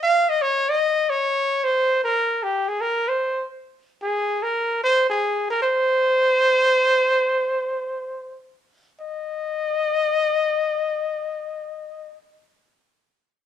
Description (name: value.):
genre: jazz.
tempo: free time.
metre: none.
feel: none.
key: Eb mixolydian.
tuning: A4 = 438 Hz.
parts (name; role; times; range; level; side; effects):
warm trumpet; solo; 0.0-12.2 s; G4 to F5; -19 LUFS; equal; none.
room: moderate studio reverb, RT60 0.9 s.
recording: band playing live in one room.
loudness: -19 LUFS.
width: side -10 dB against mid.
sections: 0.0-9.0 A section; 9.0-11.8 B section.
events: slowing down 6.4-9.0.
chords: none.